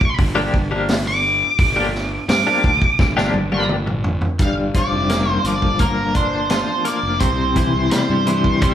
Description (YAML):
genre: psychedelic rock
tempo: 85 BPM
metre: 4/4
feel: straight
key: G minor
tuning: A4 = 441 Hz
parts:
  - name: octave-fuzz lead guitar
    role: melody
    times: 0.0-8.7 s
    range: Bb4 to D6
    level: -20 LUFS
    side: right 1 dB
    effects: distortion
  - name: vintage drum kit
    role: drums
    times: 0.0-8.7 s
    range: hi-hat, kick drum, snare drum, toms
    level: -20 LUFS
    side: equal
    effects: none
  - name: twelve-string electric guitar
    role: riff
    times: 0.2-8.7 s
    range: G2 to G4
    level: -21 LUFS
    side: left 3 dB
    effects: tremolo
  - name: fuzz fingered electric bass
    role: bass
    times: 0.2-8.7 s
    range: F1 to C3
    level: -24 LUFS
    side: right 1 dB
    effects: overdrive
room: moderate large studio reverb, RT60 1.1 s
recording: band playing live in one room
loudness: -16 LUFS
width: side -10 dB against mid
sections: 0.0-4.4 A section; 4.4-8.7 B section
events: lead electric guitar solo 0.0-4.4; drum fill 3.0-4.4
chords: 0.0 Gm7; 7.2 C